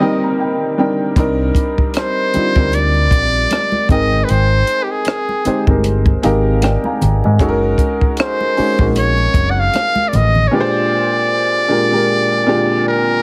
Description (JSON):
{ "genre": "R&B, neo-soul", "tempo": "77 BPM", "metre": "4/4", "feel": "swing 57% on 16ths", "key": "unclear", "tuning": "A4 = 441 Hz", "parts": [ { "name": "trumpet with metal mute", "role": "melody", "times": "0.0-13.2 s", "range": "G4 to Gb5", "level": "-19 LUFS", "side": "equal", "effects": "slapback echo, plate reverb" }, { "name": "warm upright piano", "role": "accompaniment", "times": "0.0-13.2 s", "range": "Bb2 to Bb5", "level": "-20 LUFS", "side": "equal", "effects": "plate reverb" }, { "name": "dark studio string section", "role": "sustained chords", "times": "0.0-1.1 s", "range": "C3 to C4", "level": "-33 LUFS", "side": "equal", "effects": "none" }, { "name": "deep dub picked electric bass", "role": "bass", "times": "1.2-10.5 s", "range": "Gb1 to Ab2", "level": "-18 LUFS", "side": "equal", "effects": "none" }, { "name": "compact cocktail drum kit", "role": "drums", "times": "1.2-10.3 s", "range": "hi-hat, kick drum, rim click", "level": "-19 LUFS", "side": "equal", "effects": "none" }, { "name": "congas", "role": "percussion", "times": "2.6-10.5 s", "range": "none", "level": "-27 LUFS", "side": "equal", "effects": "none" } ], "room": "light reverb", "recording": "heavily compressed radio sound", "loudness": "-15 LUFS", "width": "mono", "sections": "0.0-1.2 A section; 1.2-13.2 B section", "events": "break 0.0-1.2; upright piano fill 0.0-1.2, 5.8-7.4", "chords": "0.0 Cm9; 3.9 Abmaj7; 7.4 Gb69; 10.5 Bb13" }